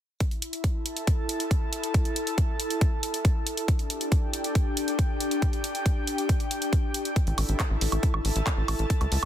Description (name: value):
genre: psychedelic trance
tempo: 138 BPM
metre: 4/4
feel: straight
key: unclear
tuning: A4 = 440 Hz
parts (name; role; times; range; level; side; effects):
- big-room dance drum kit; drums; 0.2-9.3 s; handclaps, hi-hat, woodblock; -32 LUFS; right 1 dB; none
- electronic kick drum; drums; 0.2-9.0 s; none; -24 LUFS; equal; none
- airy breathy pad; texture; 0.2-9.3 s; D4 to A5; -31 LUFS; left 1 dB; chorus, sidechain pumping
- tight sequencer bass; bass; 7.3-9.3 s; A1 to C#2; -26 LUFS; equal; none
room: little or no reverb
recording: dense, heavily limited modern master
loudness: -24 LUFS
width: side -11 dB against mid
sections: 0.2-9.3 A section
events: none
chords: 0.2 A5; 3.7 G5; 7.2 A5